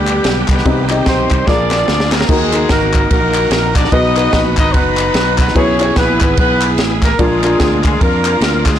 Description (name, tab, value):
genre	uptempo gospel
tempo	147 BPM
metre	4/4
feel	swing 60% on 8ths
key	Eb harmonic minor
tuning	A4 = 440 Hz
part	mellow horn section	melody	0.0-8.8 s	G3 to D#5	-15 LUFS	equal	none
part	bright tonewheel organ	sustained chords	0.0-8.8 s	D3 to Ab4	-24 LUFS	right 4 dB	slow rotary speaker, chorus vibrato
part	fingered electric bass	bass	0.0-8.8 s	F#1 to F2	-19 LUFS	right 1 dB	transformer saturation
part	crisp fusion drum kit	drums	0.1-8.8 s	crash cymbal, kick drum, ride cymbal, snare drum	-16 LUFS	equal	none
part	group handclap	percussion	0.1-8.7 s	none	-24 LUFS	left 7 dB	none
part	warm upright piano	accompaniment	0.7-8.0 s	Bb2 to Eb5	-17 LUFS	left 2 dB	none
room	light reverb, small room ambience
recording	blown-out, overdriven recording, overdrive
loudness	-11 LUFS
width	side -10 dB against mid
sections	0.0-2.3 A section; 2.3-8.8 A section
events	drum fill 1.5-2.3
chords	0.0 G; 0.7 Cm; 1.5 Bb7; 2.3 Ebm; 3.9 B; 5.6 E; 7.2 Bb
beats	0.25 | 0.66 1.07 1.48 1.88 | 2.29 2.70 3.11 3.52 | 3.92 4.33 4.74 5.15 | 5.56 5.97 6.37 6.78 | 7.19 7.60 8.01 8.41